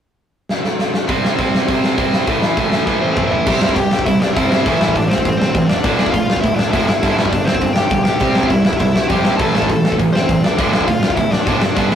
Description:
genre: punk rock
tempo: 202 BPM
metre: 4/4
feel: straight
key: unclear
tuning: A4 = 440 Hz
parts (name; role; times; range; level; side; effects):
- big rock drum kit; drums; 0.5-11.9 s; crash cymbal, hi-hat, kick drum, snare drum, toms; -17 LUFS; equal; none
- distorted electric guitar; riff; 1.1-11.9 s; D2 to C4; -19 LUFS; right 3 dB; distortion
- overdriven electric guitar; riff; 1.1-11.9 s; D2 to C4; -23 LUFS; left 2 dB; none
- bluesy overdriven lead guitar; melody; 3.0-11.9 s; C4 to A5; -20 LUFS; left 1 dB; distortion
- overdriven picked electric bass; bass; 3.5-11.9 s; D1 to F2; -24 LUFS; left 1 dB; none
room: light reverb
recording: rough rehearsal-room recording, warm saturation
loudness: -13 LUFS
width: side -9 dB against mid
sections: 0.0-1.1 A section; 1.1-3.5 B section; 3.5-11.9 C section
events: drum fill 0.5-1.1, 2.9-3.5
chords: 0.0 N.C.; 1.1 C5; 2.3 Am; 3.5 C; 4.7 Am; 5.8 Dm; 6.9 G5; 8.2 C; 9.4 Am; 10.6 Dm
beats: 0.19 0.49 0.79 | 1.09 1.39 1.68 1.98 | 2.28 2.58 2.87 3.17 | 3.47 3.77 4.06 4.36 | 4.66 4.95 5.25 5.55 | 5.84 6.14 6.43 6.73 | 7.03 7.32 7.62 7.92 | 8.21 8.51 8.80 9.10 | 9.39 9.69 9.99 10.28 | 10.58 10.88 11.17 11.47 | 11.76

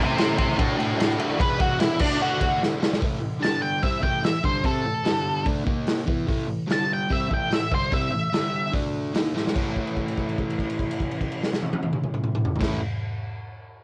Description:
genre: garage rock duo or trio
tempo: 147 BPM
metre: 4/4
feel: straight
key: A major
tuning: A4 = 440 Hz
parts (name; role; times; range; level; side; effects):
- octave-fuzz lead guitar; melody; 0.0-8.7 s; C4 to A5; -27 LUFS; equal; distortion, cassette tape, plate reverb
- crunchy overdriven guitar; riff; 0.0-12.8 s; E2 to G#4; -31 LUFS; equal; cassette tape
- raw garage drum kit; drums; 0.2-12.7 s; crash cymbal, hi-hat, kick drum, ride cymbal, snare drum, toms; -28 LUFS; equal; cassette tape
room: light reverb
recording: home recording on cassette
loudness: -24 LUFS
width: mono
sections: 0.0-3.0 A section; 3.0-9.6 B section; 9.6-12.8 C section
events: drum fill 2.6-3.0, 9.4; lead electric guitar solo 3.0-9.6; held note 9.6-12.6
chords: 0.0 A; 0.6 D; 1.4 E; 2.0 D; 3.0 A5; 3.4 G5; 3.8 A5; 5.1 G5; 5.5 D5; 5.7 D#5; 6.1 A5; 6.7 G5; 7.1 A5; 8.3 G5; 8.7 D5; 9.1 A5; 9.6 A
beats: 0.18 0.59 0.99 | 1.40 1.80 2.21 2.61 | 3.02 3.42 3.83 4.24 | 4.64 5.05 5.46 5.87 | 6.28 6.69 7.09 7.50 | 7.92 8.33 8.74 9.15 | 9.56 9.97 10.38 10.79 | 11.20 11.61 12.02 12.44

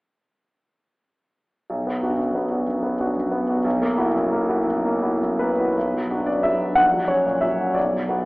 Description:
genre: classical, romantic character piece for solo piano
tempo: 60 BPM (dotted quarters)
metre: 6/8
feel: rubato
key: B minor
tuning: A4 = 440 Hz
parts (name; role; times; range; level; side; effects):
- warm concert grand piano; solo; 1.7-8.3 s; A#1 to F#5; -19 LUFS; equal; none
room: wet recital hall reverb, RT60 1.5 s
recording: heard from further back in the room, AM radio sound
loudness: -19 LUFS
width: side -24 dB against mid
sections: 1.7-5.8 A section; 5.8-8.3 B section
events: none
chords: 1.7 Bm; 3.6 F#7/B; 5.8 Bm; 6.8 F#/A#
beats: | 1.70 2.67 | 3.65 4.66 | 5.75 6.76 | 7.76

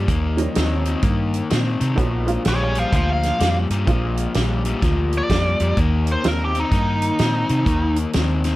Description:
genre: electric blues shuffle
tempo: 127 BPM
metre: 4/4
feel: swing 63% on 8ths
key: unclear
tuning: A4 = 441 Hz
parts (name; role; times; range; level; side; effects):
- overdriven electric guitar; riff; 0.0-8.6 s; Bb2 to C4; -24 LUFS; left 4 dB; spring reverb
- vintage muted fingered electric bass; bass; 0.0-8.5 s; Bb1 to C3; -21 LUFS; equal; none
- natural country drum kit; drums; 0.1-8.5 s; hi-hat, kick drum, snare drum; -23 LUFS; right 1 dB; none
- honky-tonk upright piano; accompaniment; 0.4-6.5 s; F3 to Gb4; -28 LUFS; right 4 dB; plate reverb
- biting lead guitar; melody; 2.5-8.0 s; Eb4 to F5; -23 LUFS; equal; overdrive
room: light reverb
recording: none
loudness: -17 LUFS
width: side -17 dB against mid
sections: 0.0-8.6 A section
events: none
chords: 0.1 Eb9; 2.0 Bb9; 5.8 Eb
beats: | 0.09 0.56 1.03 1.51 | 1.98 2.46 2.93 3.40 | 3.88 4.35 4.83 5.30 | 5.77 6.25 6.72 7.19 | 7.67 8.14

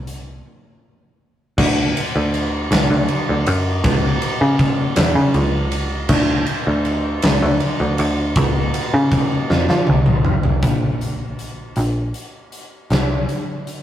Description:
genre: quiet-loud alternative rock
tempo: 53 BPM (dotted quarters)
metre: 6/8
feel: straight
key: D major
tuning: A4 = 440 Hz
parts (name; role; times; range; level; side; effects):
- picked electric bass; bass; 0.0-13.2 s; Bb1 to F3; -18 LUFS; equal; none
- big rock drum kit; drums; 0.1-13.8 s; crash cymbal, hi-hat, kick drum, ride cymbal, snare drum, toms; -19 LUFS; equal; none
room: moderate stone room reverb, RT60 1.0 s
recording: rough rehearsal-room recording, tube saturation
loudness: -16 LUFS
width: side -11 dB against mid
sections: 0.0-1.6 A section; 1.6-10.6 B section; 10.6-13.8 C section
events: break 0.4-1.6; drum fill 9.5-10.6; half time 10.6-13.8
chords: none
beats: 0.44 | 1.57 2.70 | 3.83 4.96 | 6.09 7.22 | 8.36 9.49 | 10.63 11.77 | 12.90

